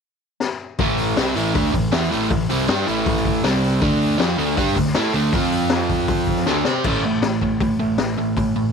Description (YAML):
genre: garage rock duo or trio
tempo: 158 BPM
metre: 4/4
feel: straight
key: unclear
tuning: A4 = 440 Hz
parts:
  - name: raw garage drum kit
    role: drums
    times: 0.4-8.5 s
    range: crash cymbal, hi-hat, kick drum, snare drum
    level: -23 LUFS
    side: left 3 dB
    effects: none
  - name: crunchy overdriven guitar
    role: riff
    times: 0.8-8.7 s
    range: A2 to C5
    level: -19 LUFS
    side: right 1 dB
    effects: none
  - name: growling picked electric bass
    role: bass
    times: 0.8-8.7 s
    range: A1 to C3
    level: -28 LUFS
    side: right 1 dB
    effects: overdrive
room: light reverb, small room ambience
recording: 1960s-style stereo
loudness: -17 LUFS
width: side -6 dB against mid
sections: 0.8-6.8 A section; 6.8-8.7 B section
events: drum fill 0.4-0.8, 6.5-6.8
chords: 0.0 N.C.; 0.8 A5; 3.4 C5; 3.8 D5; 5.3 F5; 6.5 D5; 6.8 N.C.